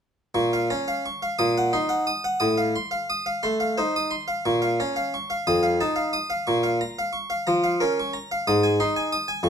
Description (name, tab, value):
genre	classical, baroque-style suite movement for harpsichord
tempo	59 BPM (dotted quarters)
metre	6/8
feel	rubato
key	Bb minor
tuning	A4 = 440 Hz
part	harpsichord	solo	0.3-9.5 s	F2 to Eb6	-22 LUFS	equal	none
room	moderate large studio reverb, RT60 0.9 s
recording	dark, warm production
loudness	-22 LUFS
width	side -7 dB against mid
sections	0.4-9.5 A section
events	none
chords	0.4 Bbm; 1.4 Cm7b5/Bb; 2.4 F7/A; 4.4 Bbm; 5.5 F7; 6.5 Bbm; 8.5 Ab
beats	| 0.36 1.38 | 2.41 3.43 | 4.44 5.46 | 6.47 7.47 | 8.46 9.44